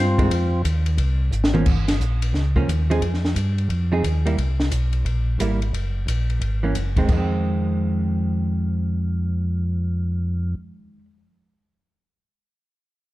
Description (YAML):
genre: soul jazz organ trio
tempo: 177 BPM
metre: 4/4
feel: swing 64% on 8ths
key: F minor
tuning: A4 = 439 Hz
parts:
  - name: percussive tonewheel organ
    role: melody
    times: 0.0-0.6 s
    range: C4 to F4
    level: -24 LUFS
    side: left 1 dB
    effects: slow rotary speaker, overdrive
  - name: mellow tonewheel organ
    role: bass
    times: 0.0-10.6 s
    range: Gb1 to G2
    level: -21 LUFS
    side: equal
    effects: slow rotary speaker
  - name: vintage hollow-body jazz guitar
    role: accompaniment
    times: 0.2-11.1 s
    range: Eb3 to Ab4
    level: -26 LUFS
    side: right 2 dB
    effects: none
  - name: compact cocktail drum kit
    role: drums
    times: 0.2-7.2 s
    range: crash cymbal, hi-hat, kick drum, ride cymbal, snare drum, toms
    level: -24 LUFS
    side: equal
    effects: none
room: light reverb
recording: dark, warm production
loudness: -19 LUFS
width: side -17 dB against mid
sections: 0.0-1.7 A section; 1.7-7.1 B section; 7.1-9.8 C section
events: drum fill 1.3-1.7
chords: 0.0 F7(no3); 1.0 Ab69; 1.7 Gm7b5; 3.0 F7(no3); 4.4 C7; 5.7 Gb; 7.1 Fm7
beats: | 0.31 0.65 0.99 1.33 | 1.67 2.00 2.34 2.68 | 3.02 3.36 3.70 4.04 | 4.38 4.71 5.05 5.39 | 5.73 6.07 6.41 6.75 | 7.08 7.42 7.76 8.10 | 8.44 8.78 9.11 9.45